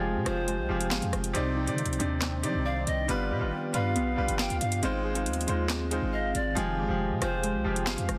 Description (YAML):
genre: hip hop, drill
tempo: 138 BPM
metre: 4/4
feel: half-time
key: unclear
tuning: A4 = 440 Hz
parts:
  - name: bright concert grand piano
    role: accompaniment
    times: 0.0-8.2 s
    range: C3 to D5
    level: -34 LUFS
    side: equal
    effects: none
  - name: glassy FM pad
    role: sustained chords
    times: 0.0-8.2 s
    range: Eb3 to G5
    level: -43 LUFS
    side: equal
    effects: none
  - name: warbly lo-fi synth keys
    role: arpeggios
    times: 0.0-8.2 s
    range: Ab3 to F5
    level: -36 LUFS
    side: equal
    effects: chorus, tape echo
  - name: hard-hitting 808-style bass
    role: bass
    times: 0.0-8.2 s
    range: F1 to G3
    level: -34 LUFS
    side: equal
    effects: none
  - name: bright polished pan flute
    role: second line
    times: 0.3-7.8 s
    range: C5 to G5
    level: -38 LUFS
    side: equal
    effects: tape echo
  - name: drill drum kit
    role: drums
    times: 0.3-8.2 s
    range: handclaps, hi-hat, rim click, snare drum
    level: -35 LUFS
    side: equal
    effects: none
room: digital ambience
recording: dense, heavily limited modern master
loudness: -29 LUFS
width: mono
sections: 0.0-8.2 A section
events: none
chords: 0.0 Fmadd9; 1.3 Cmadd9; 3.1 G7; 4.8 Ab6; 6.6 Fmadd9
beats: 0.04 0.48 0.91 | 1.35 1.78 2.22 2.65 | 3.09 3.52 3.96 4.39 | 4.83 5.26 5.70 6.13 | 6.57 7.00 7.43 7.87